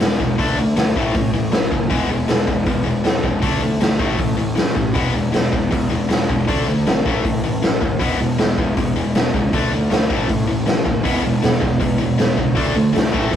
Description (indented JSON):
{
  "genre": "punk rock",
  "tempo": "158 BPM",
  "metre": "4/4",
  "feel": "straight",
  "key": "E major",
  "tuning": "A4 = 440 Hz",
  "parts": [
    { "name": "tight distorted guitar", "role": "riff", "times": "0.0-13.4 s", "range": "A2 to D4", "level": "-20 LUFS", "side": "left 3 dB", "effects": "distortion" },
    { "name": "fuzz picked electric bass", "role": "bass", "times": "0.0-13.4 s", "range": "E1 to A2", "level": "-23 LUFS", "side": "right 1 dB", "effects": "overdrive" },
    { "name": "raw garage drum kit", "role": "drums", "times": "0.0-13.4 s", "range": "hi-hat, kick drum, snare drum", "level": "-19 LUFS", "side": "equal", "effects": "none" },
    { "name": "distorted electric guitar", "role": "riff", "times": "11.0-13.4 s", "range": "E2 to D4", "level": "-22 LUFS", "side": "right 5 dB", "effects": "distortion" }
  ],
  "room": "light reverb",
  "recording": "rough rehearsal-room recording",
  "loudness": "-16 LUFS",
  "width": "side -9 dB against mid",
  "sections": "0.0-13.4 A section",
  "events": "none",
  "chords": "0.4 D5; 1.0 A5; 1.9 E; 3.4 D5; 4.0 A5; 5.0 E; 6.5 D5; 7.1 A5; 8.0 E; 9.5 D5; 10.1 A5; 11.1 E; 12.6 D5",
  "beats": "0.01 | 0.39 0.77 1.15 1.53 | 1.91 2.29 2.67 3.05 | 3.43 3.81 4.19 4.58 | 4.96 5.34 5.72 6.10 | 6.48 6.86 7.24 7.62 | 8.01 8.39 8.77 9.15 | 9.53 9.91 10.29 10.67 | 11.05 11.43 11.81 12.19 | 12.57 12.96 13.34"
}